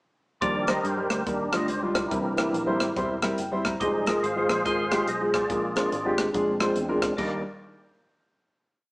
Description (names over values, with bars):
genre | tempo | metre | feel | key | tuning
uptempo gospel | 142 BPM | 4/4 | swing 62% on 8ths | Eb major | A4 = 440 Hz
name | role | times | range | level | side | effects
clear grand piano | accompaniment | 0.4-7.4 s | Eb2 to Bb5 | -27 LUFS | equal | none
percussive tonewheel organ | sustained chords | 0.4-7.4 s | E3 to F5 | -28 LUFS | equal | slow rotary speaker, overdrive, chorus vibrato
fingered electric bass | bass | 0.4-7.4 s | E1 to G2 | -36 LUFS | equal | none
crisp fusion drum kit | drums | 0.4-7.3 s | crash cymbal, hi-hat, kick drum, rim click | -30 LUFS | equal | none
room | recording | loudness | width
moderate stone room reverb, RT60 1.2 s | band playing live in one room, small speaker sound | -23 LUFS | side -25 dB against mid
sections
0.4-7.2 breakdown; 7.2-8.9 final chord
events
tonewheel organ solo 0.4-7.2; grand piano fill 3.2-3.8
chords
0.4 Ebmaj7; 2.1 C7; 3.8 Fm7; 5.5 Bb7; 7.2 Ebmaj7